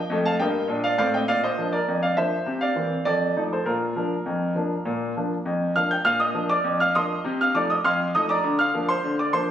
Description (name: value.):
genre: ragtime piano.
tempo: 101 BPM.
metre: 2/4.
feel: straight.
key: Bb major.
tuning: A4 = 440 Hz.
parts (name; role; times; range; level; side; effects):
clear grand piano; solo; 0.0-9.5 s; F2 to G6; -21 LUFS; equal; none.
room: light reverb.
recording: recorded on a phone in the room, club reverb, faint mains hum.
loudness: -21 LUFS.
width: side -10 dB against mid.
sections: 0.0-6.1 A section; 6.1-9.5 A section.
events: none.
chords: 0.1 F7; 1.3 Bb; 2.5 C7; 3.1 F7; 3.7 Bb; 7.2 F7/C; 8.4 Bb/D.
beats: | 0.10 0.69 | 1.28 1.87 | 2.47 3.06 | 3.66 4.26 | 4.86 5.46 | 6.06 6.66 | 7.25 7.84 | 8.44 9.03.